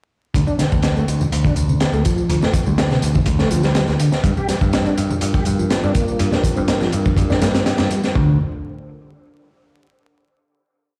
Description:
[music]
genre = breakbeat, breaks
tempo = 123 BPM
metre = 4/4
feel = straight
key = D minor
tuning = A4 = 440 Hz
[part]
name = tonewheel organ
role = riff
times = 0.3-8.4 s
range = C3 to G4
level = -24 LUFS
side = equal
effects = chorus vibrato, slow rotary speaker, tube saturation, low-pass filter, dub echo
[part]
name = picked electric bass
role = bass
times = 0.3-8.4 s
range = D2 to G2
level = -22 LUFS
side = equal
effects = none
[part]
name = crunchy breakbeat drum kit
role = drums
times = 0.3-8.3 s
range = hi-hat, kick drum, snare drum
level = -22 LUFS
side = equal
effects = none
[part]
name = tambourine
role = drums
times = 0.3-8.1 s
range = none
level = -39 LUFS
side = equal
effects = none
[part]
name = congas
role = percussion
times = 0.5-7.4 s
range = none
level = -29 LUFS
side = equal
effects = none
[part]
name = dark analog pad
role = sustained chords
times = 4.2-8.4 s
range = G3 to C5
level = -30 LUFS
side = equal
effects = chorus, vintage 12-bit sampler grit, sidechain pumping
[sound]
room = light reverb, studio reverb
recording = played on a big sound system in a bare room, stone room reverb, vinyl crackle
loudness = -18 LUFS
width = mono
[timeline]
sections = 0.3-8.2 groove; 8.2-10.1 final chord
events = filter sweep on tonewheel organ 0.3-8.2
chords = 0.3 Dm; 4.2 Gm7; 8.2 Dm7

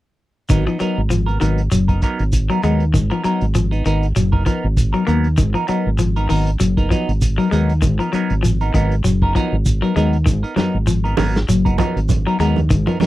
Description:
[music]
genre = afrobeat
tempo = 98 BPM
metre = 4/4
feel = swing 56% on 16ths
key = G# dorian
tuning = A4 = 440 Hz
[part]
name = electric guitar at the edge of break-up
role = arpeggios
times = 0.5-13.1 s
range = D#3 to A#3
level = -21 LUFS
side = left 5 dB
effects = none
[part]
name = semi-hollow electric guitar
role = stabs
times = 0.5-13.1 s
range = F#3 to A#4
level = -22 LUFS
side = right 4 dB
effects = phaser
[part]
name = fingered electric bass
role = bass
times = 0.5-13.0 s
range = F#1 to D#2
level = -18 LUFS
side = equal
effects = none
[part]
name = vintage drum kit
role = drums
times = 0.5-13.1 s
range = hi-hat, kick drum, snare drum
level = -20 LUFS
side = equal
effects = none
[part]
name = shekere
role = percussion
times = 0.5-13.1 s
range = none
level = -22 LUFS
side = right 2 dB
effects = none
[part]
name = congas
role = percussion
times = 10.6-13.1 s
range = none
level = -22 LUFS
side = right 7 dB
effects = none
[sound]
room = little or no reverb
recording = dry, close 1970s-style studio recording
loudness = -15 LUFS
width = side -16 dB against mid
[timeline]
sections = 0.5-13.1 A section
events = none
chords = 0.5 G#m9

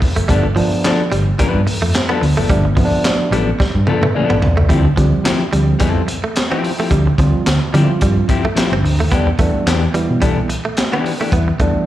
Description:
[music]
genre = funk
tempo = 109 BPM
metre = 4/4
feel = swing 56% on 16ths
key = D dorian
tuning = A4 = 440 Hz
[part]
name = direct-recorded clean electric guitar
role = riff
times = 0.0-11.7 s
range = F3 to C4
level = -23 LUFS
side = right 4 dB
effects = spring reverb, slapback echo
[part]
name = hollow-body short-scale fingered electric bass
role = bass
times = 0.0-11.7 s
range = F1 to D3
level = -16 LUFS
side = equal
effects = none
[part]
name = crunchy breakbeat drum kit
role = drums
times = 0.0-11.7 s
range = handclaps, hi-hat, kick drum, snare drum, toms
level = -18 LUFS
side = equal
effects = none
[part]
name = clean electric guitar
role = accompaniment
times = 0.3-11.3 s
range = E3 to B4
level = -20 LUFS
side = left 6 dB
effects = tube saturation, slapback echo
[part]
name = tine electric piano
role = stabs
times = 0.3-11.9 s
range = E3 to D5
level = -19 LUFS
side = right 2 dB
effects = none
[sound]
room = little or no reverb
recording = live gig heard through the venue's PA, recital hall reverb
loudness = -13 LUFS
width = side -13 dB against mid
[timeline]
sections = 0.0-4.7 A section; 4.7-11.9 B section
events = drum fill 3.6-4.7; tine electric piano fill 3.6-4.7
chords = 0.0 G9; 4.7 Dm11; 9.1 Em7

